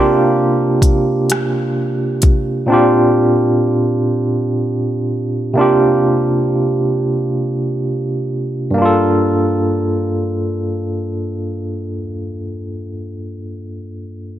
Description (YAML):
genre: slow six-eight R&B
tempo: 34-43 BPM (dotted quarters)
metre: 6/8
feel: straight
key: G minor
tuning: A4 = 438 Hz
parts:
  - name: barky tine electric piano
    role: accompaniment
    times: 0.0-14.4 s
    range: G2 to A4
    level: -15 LUFS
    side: right 1 dB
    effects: medium tremolo
  - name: smooth R&B drum kit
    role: drums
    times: 0.8-2.4 s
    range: hi-hat, kick drum, rim click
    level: -15 LUFS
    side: left 1 dB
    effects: none
room: light reverb, digital ambience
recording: none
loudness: -14 LUFS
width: side -12 dB against mid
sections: 0.0-8.8 A section; 8.8-12.3 B section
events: slowing down 2.7-8.8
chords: 0.0 C9sus4; 2.7 Bb69; 5.6 C9sus4; 8.8 Gm9